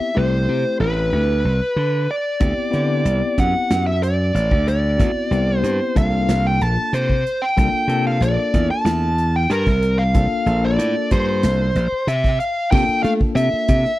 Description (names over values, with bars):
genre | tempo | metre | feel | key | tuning
electric jazz fusion | 93 BPM | 4/4 | straight | C mixolydian | A4 = 437 Hz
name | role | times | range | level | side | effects
smooth overdriven lead guitar | melody | 0.0-14.0 s | Bb4 to A5 | -21 LUFS | equal | slapback echo
bell-like tine electric piano | accompaniment | 0.0-13.9 s | A3 to A4 | -24 LUFS | left 4 dB | medium stereo tremolo
glassy slap bass | bass | 0.0-13.8 s | A1 to A3 | -19 LUFS | equal | none
modern studio drum kit | drums | 2.4-13.9 s | crash cymbal, hi-hat, kick drum, snare drum | -20 LUFS | equal | none
room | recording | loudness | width
studio reverb | dry, close 1970s-style studio recording | -16 LUFS | side -16 dB against mid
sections
0.0-12.7 A section; 12.7-14.0 B section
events
none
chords
0.0 D13sus4; 6.0 C13sus4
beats
0.48 1.12 1.77 | 2.41 3.06 3.70 4.35 | 4.99 5.64 6.28 6.93 | 7.57 8.22 8.86 9.51 | 10.15 10.79 11.44 12.08 | 12.72 13.37